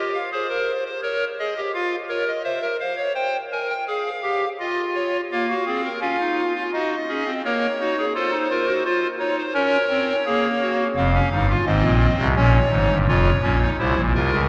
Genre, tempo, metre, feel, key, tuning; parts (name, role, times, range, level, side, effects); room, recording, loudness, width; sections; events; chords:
classical, baroque-style 4-part fugue for pipe organ; 85 BPM; 4/4; straight; Bb minor; A4 = 445 Hz
pipe organ, clarinet reed; solo; 0.0-14.5 s; F1 to Ab5; -22 LUFS; equal
wet cathedral reverb, RT60 6.0 s; dark, warm production; -22 LUFS; mono
0.0-5.3 A section; 5.3-14.5 B section
0.0 Fm; 1.0 Bbm; 2.4 C7; 3.9 Fm; 5.3 Bb5; 6.7 Ebm; 8.2 F7; 9.6 Bbm; 11.0 Fm; 12.4 Bbm; 13.8 C7